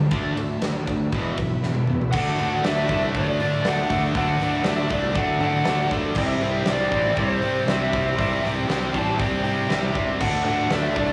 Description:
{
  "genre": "hard rock",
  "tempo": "119 BPM",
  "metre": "4/4",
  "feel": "straight",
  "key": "unclear",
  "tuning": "A4 = 440 Hz",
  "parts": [
    { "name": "overdriven tonewheel organ", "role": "sustained chords", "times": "0.0-11.1 s", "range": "C4 to E5", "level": "-40 LUFS", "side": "equal", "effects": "none" },
    { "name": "sludgy distorted guitar", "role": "riff", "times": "0.0-11.1 s", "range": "E2 to D4", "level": "-27 LUFS", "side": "equal", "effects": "overdrive, cassette tape" },
    { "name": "fuzz fingered electric bass", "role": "bass", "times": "0.0-11.1 s", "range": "E1 to D3", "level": "-30 LUFS", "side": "equal", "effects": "overdrive" },
    { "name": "huge arena drum kit", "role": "drums", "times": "0.1-11.1 s", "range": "crash cymbal, hi-hat, kick drum, ride cymbal, snare drum, toms", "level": "-30 LUFS", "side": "equal", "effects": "cassette tape" },
    { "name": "lead guitar through a small cranked amp", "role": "melody", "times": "2.1-11.1 s", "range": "C5 to A5", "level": "-28 LUFS", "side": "equal", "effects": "overdrive, cassette tape, tape echo" },
    { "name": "cranked stack guitar", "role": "riff", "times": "2.1-11.1 s", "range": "C3 to E4", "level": "-33 LUFS", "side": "equal", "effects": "none" }
  ],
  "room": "light reverb",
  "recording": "home recording on cassette, studio reverb",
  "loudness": "-23 LUFS",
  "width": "mono",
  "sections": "0.0-2.1 A section; 2.1-11.1 B section",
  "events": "drum fill 1.6-2.1",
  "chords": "0.1 D5; 1.1 E5; 2.1 D; 6.2 C; 10.2 D"
}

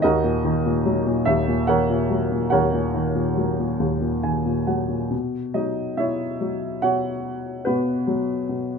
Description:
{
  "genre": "classical, lyrical solo piano",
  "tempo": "72 BPM",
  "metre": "3/4",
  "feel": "rubato",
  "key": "B major from 5.1 s",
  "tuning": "A4 = 444 Hz",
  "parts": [
    { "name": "warm upright piano", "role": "solo", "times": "0.0-8.8 s", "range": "D#2 to G#5", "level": "-20 LUFS", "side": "equal", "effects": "none" }
  ],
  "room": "light reverb",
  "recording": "minimal, uncompressed stereo recording",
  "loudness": "-20 LUFS",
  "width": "side -6 dB against mid",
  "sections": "0.0-5.1 A section; 5.1-8.8 B section",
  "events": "upright piano fill 3.8-5.1, 8.5",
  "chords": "0.0 D#m7; 5.1 Bsus2"
}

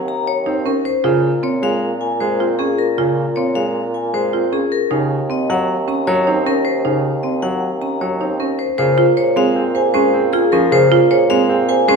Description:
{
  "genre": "classical, minimalist pattern music",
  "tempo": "155 BPM",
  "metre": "5/4",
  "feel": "straight",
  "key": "unclear",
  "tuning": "A4 = 439 Hz",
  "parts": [
    { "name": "mellow bassoon", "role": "bass", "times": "0.0-12.0 s", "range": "Eb2 to Bb2", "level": "-22 LUFS", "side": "right 1 dB", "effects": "none" },
    { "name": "vibraphone with hard mallets", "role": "melody", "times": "0.1-12.0 s", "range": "Ab4 to Bb5", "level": "-19 LUFS", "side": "left 5 dB", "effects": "none" },
    { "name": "clear baby grand piano", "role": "accompaniment", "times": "0.5-12.0 s", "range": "Db3 to C4", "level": "-21 LUFS", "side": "right 2 dB", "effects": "none" },
    { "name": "buzzing marimba with hard mallets", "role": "arpeggios", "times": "0.5-12.0 s", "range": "C4 to C5", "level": "-20 LUFS", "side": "right 4 dB", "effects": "none" },
    { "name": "warm French horn", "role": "second line", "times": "8.8-12.0 s", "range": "Ab4", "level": "-22 LUFS", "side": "right 6 dB", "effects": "none" }
  ],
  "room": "moderate scoring stage reverb, RT60 1.5 s",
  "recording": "minimal, uncompressed stereo recording",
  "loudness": "-14 LUFS",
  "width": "side -4 dB against mid",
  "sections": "0.0-8.8 A section; 8.8-12.0 A section",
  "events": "none",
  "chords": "0.0 Eb7(no3); 1.0 Bbm7; 4.9 Ebm7; 8.8 Bbm7"
}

